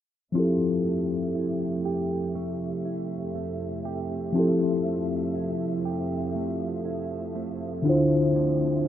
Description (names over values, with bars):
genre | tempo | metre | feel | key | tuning
R&B | 60 BPM | 4/4 | swing 54% on 16ths | F major | A4 = 443 Hz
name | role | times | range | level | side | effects
mellow tine electric piano | accompaniment | 0.3-8.9 s | D3 to C5 | -25 LUFS | left 2 dB | slow stereo tremolo
warm studio string section | sustained chords | 0.3-8.9 s | D2 to E5 | -35 LUFS | right 1 dB | none
direct-recorded clean electric guitar | arpeggios | 0.4-8.9 s | D3 to G4 | -33 LUFS | right 10 dB | analog chorus
room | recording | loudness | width
light reverb, small room ambience | rough home demo mix, low-pass filter | -24 LUFS | side -11 dB against mid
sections
0.4-8.9 A section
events
filter sweep 0.4-8.9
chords
0.4 Fmaj9; 7.9 Dm9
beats
| 0.35 1.35 2.35 3.35 | 4.35 5.35 6.35 7.35 | 8.35